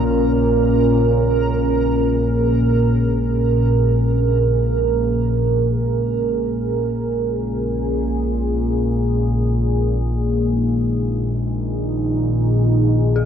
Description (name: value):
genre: dark ambient drone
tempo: free time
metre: none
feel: none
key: Bb minor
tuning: A4 = 440 Hz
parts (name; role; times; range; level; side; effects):
- deep dark ambient pad; sustained chords; 0.0-13.3 s; Bb2 to Bb4; -19 LUFS; right 2 dB; chorus, built-in reverb
- dark detuned synth bell; arpeggios; 0.0-5.8, 13.2-13.3 s; Ab4; -27 LUFS; left 10 dB; chorus, phaser, diffuse ambient delay
- analog drone; drone; 0.0-13.3 s; Bb1 to Bb2; -19 LUFS; left 1 dB; chorus
- backwards swelling texture; texture; 0.0-5.8 s; Bb4; -32 LUFS; right 2 dB; built-in reverb, wide subtle chorus
room: moderate plate reverb, RT60 2.5 s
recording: dreamy mix soaked in reverb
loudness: -16 LUFS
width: side -8 dB against mid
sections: 0.0-5.8 A section; 5.8-13.3 B section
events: fade-in on synth bell 5.8-13.3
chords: 0.0 Ab5/Bb; 5.8 Bbm7